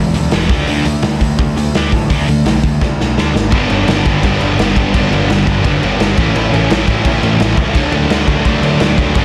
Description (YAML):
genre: punk rock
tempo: 170 BPM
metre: 4/4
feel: straight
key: unclear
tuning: A4 = 441 Hz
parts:
  - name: sludgy distorted guitar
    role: riff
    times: 0.0-9.2 s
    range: G2 to E4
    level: -18 LUFS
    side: equal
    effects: overdrive
  - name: fuzz picked electric bass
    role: bass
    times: 0.0-9.2 s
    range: E1 to A2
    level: -21 LUFS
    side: equal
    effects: overdrive
  - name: raw garage drum kit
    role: drums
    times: 0.1-9.2 s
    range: crash cymbal, hi-hat, kick drum, snare drum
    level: -18 LUFS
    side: equal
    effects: none
  - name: distorted electric guitar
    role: riff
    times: 3.5-9.2 s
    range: G2 to E4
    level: -21 LUFS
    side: equal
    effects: distortion
room: light reverb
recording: dense, heavily limited modern master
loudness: -13 LUFS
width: mono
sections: 0.0-3.5 A section; 3.5-9.2 B section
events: drum fill 2.8-3.5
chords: 0.0 E; 0.5 D5; 3.5 G; 6.2 A; 7.8 D